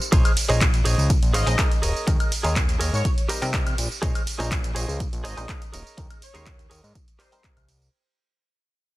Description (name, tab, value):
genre	filtered disco house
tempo	123 BPM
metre	4/4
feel	straight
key	Bb dorian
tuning	A4 = 440 Hz
part	muted clav	accompaniment	0.0-7.9 s	G3 to C6	-32 LUFS	equal	phaser, sidechain pumping
part	punchy analog drum machine	drums	0.0-7.9 s	handclaps, hi-hat, ride cymbal, tambourine, woodblock	-28 LUFS	right 1 dB	sidechain pumping on hats, sidechain pumping on perc, sidechain pumping on cymbals
part	direct-recorded clean electric guitar	riff	0.1-7.7 s	G4 to F5	-30 LUFS	right 2 dB	sidechain pumping
part	fat analog bass	bass	0.1-7.9 s	Eb1 to C3	-25 LUFS	equal	sidechain pumping
part	electronic kick drum	drums	0.1-7.5 s	none	-22 LUFS	equal	none
part	analog synth brass	melody	1.3-7.6 s	C5 to Eb5	-34 LUFS	left 1 dB	chorus, sidechain pumping, tape echo
room	little or no reverb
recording	dense, heavily limited modern master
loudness	-20 LUFS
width	side -18 dB against mid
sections	0.0-7.9 A section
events	drop 0.0-7.9; fade-out 0.1-7.9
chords	0.1 Bbm11; 1.8 Eb7sus4; 3.1 Cm7; 4.0 Bbm11; 5.7 Eb7sus4; 7.0 Cm7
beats	| 0.12 0.61 1.10 1.59 | 2.08 2.56 3.05 3.54 | 4.03 4.51 5.00 5.49 | 5.98 6.46 6.95 7.44